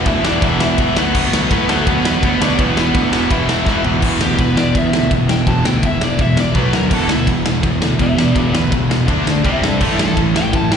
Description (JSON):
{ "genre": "punk rock", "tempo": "166 BPM", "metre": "4/4", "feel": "straight", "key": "E minor", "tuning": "A4 = 440 Hz", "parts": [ { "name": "distorted electric guitar", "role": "riff", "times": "0.0-10.8 s", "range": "E2 to D4", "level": "-22 LUFS", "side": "right 11 dB", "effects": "overdrive, slapback echo" }, { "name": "overdriven electric guitar", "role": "riff", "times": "0.0-10.8 s", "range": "E2 to D4", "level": "-21 LUFS", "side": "right 2 dB", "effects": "slapback echo" }, { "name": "tight distorted guitar", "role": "riff", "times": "0.0-10.8 s", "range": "E2 to D4", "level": "-20 LUFS", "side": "left 8 dB", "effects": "distortion, slapback echo" }, { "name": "nasal lead guitar with a parked wah", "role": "melody", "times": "0.1-10.8 s", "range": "A3 to A5", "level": "-22 LUFS", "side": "left 1 dB", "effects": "overdrive, slapback echo" }, { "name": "fuzz picked electric bass", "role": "bass", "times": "0.1-10.8 s", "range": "E1 to A2", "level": "-21 LUFS", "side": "equal", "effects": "overdrive" }, { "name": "big rock drum kit", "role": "drums", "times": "0.1-10.8 s", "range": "crash cymbal, kick drum, ride cymbal, snare drum, toms", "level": "-18 LUFS", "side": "equal", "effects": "none" } ], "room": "small room ambience", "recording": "live gig heard through the venue's PA, recital hall reverb, nothing above 10.8 kHz", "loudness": "-13 LUFS", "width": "side -7 dB against mid", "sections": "0.0-4.0 A section; 4.0-10.8 B section", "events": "drum fill 3.7-4.0; lead electric guitar solo 4.0-10.8", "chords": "0.0 E5; 1.0 Bm/D; 2.6 E5; 6.6 B5; 6.9 E5; 9.1 D5; 9.4 C5; 9.8 A5", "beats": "0.07 0.42 0.79 | 1.15 1.50 1.86 2.23 | 2.58 2.94 3.31 3.67 | 4.03 4.39 4.75 5.11 | 5.47 5.83 6.19 6.55 | 6.91 7.28 7.64 8.00 | 8.36 8.72 9.08 9.45 | 9.81 10.17 10.53" }